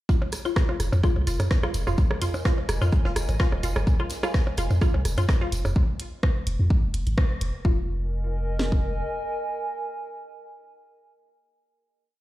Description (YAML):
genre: minimal techno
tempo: 127 BPM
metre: 4/4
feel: swing 54% on 16ths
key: F minor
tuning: A4 = 440 Hz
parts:
  - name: resonant blip pluck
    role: riff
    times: 0.1-7.9 s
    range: F4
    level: -33 LUFS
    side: left 1 dB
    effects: wide subtle chorus, sidechain pumping, tape echo
  - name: house drum kit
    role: drums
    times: 0.1-8.8 s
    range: kick drum, snare drum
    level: -22 LUFS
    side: equal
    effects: none
  - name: jazz brush drum kit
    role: drums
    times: 0.1-5.6 s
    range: hi-hat, snare drum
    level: -43 LUFS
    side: left 2 dB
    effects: sidechain pumping on hats, high-pass filter on hats, high-pass filter on snare, high-pass filter on room
  - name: tambourine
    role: percussion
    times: 0.1-5.7 s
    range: none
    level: -41 LUFS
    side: right 1 dB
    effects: none
  - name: warbly tape-like pad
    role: texture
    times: 1.3-11.0 s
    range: Bb4 to Ab5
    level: -34 LUFS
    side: right 1 dB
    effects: chorus, built-in reverb, sidechain pumping
  - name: minimal click drum kit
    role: percussion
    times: 0.2-5.7 s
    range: claves, percussion blips, rim click, toms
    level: -30 LUFS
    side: right 1 dB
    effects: overdrive, tape echo
  - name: punchy analog drum machine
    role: drums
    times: 0.3-7.5 s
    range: hi-hat, rim click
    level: -34 LUFS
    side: equal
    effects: none
  - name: punchy sub bass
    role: bass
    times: 0.8-9.0 s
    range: Eb1 to F2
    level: -25 LUFS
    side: equal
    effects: sidechain pumping
room: little or no reverb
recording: played on a big sound system in a bare room, stone room reverb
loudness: -22 LUFS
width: side -16 dB against mid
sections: 0.1-7.6 groove; 7.6-11.4 final chord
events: fade-in on ambient pad 0.1-5.8; band accent 7.2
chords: 0.1 Fm7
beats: | 0.09 0.56 1.03 1.51 | 1.98 2.45 2.92 3.40 | 3.87 4.34 4.82 5.29 | 5.76 6.23 6.70 7.18 | 7.65 8.12 8.59 9.07 | 9.54 10.01 10.48 10.96